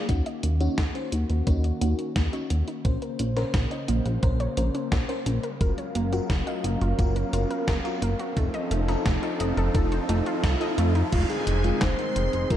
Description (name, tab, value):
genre	synthwave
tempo	87 BPM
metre	4/4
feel	straight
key	unclear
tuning	A4 = 440 Hz
part	warm analog pad	sustained chords	0.0-12.6 s	Db3 to F5	-32 LUFS	left 1 dB	wide subtle chorus
part	analog pluck	arpeggios	0.1-11.1 s	A3 to F5	-34 LUFS	right 2 dB	chorus, digital delay
part	FM electric piano with soft pad layer	stabs	0.1-12.6 s	Ab3 to Eb5	-33 LUFS	left 2 dB	chorus, phaser, digital delay
part	chorused synth bass	bass	0.1-12.6 s	F1 to F2	-25 LUFS	equal	none
part	electronic kick drum	drums	0.1-12.6 s	none	-25 LUFS	equal	none
part	gated 80s digital drum machine	drums	0.1-12.6 s	crash cymbal, handclaps, hi-hat, snare drum	-34 LUFS	equal	gated reverb, gated reverb snare, high-pass filter on hats, high-pass filter on snare, high-pass filter on cymbals, high-pass filter on room
part	riser, swell and downlifter	sound effects	3.1-12.6 s	none	-35 LUFS	right 2 dB	none
part	soft octave-layered synth lead	melody	11.1-12.6 s	F4 to C5	-29 LUFS	left 1 dB	chorus
part	string machine, violins	second line	11.1-12.6 s	F5 to C6	-37 LUFS	right 1 dB	ensemble chorus
room	light reverb, digital ambience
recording	dark, warm production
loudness	-23 LUFS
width	side -11 dB against mid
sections	0.1-11.1 A section; 11.1-12.6 B section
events	filter sweep on analog synth pad 0.1-11.1; filter sweep on synth arpeggio sound 0.1-11.1; riser 3.1-11.1; swell 9.7-11.1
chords	0.1 Ebm7; 2.8 Bbmadd9; 5.6 Gbmaj7; 8.4 F7; 11.1 Fm7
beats	| 0.09 0.78 1.47 2.16 | 2.85 3.54 4.23 4.92 | 5.61 6.30 6.99 7.68 | 8.37 9.06 9.75 10.44 | 11.12 11.81 12.51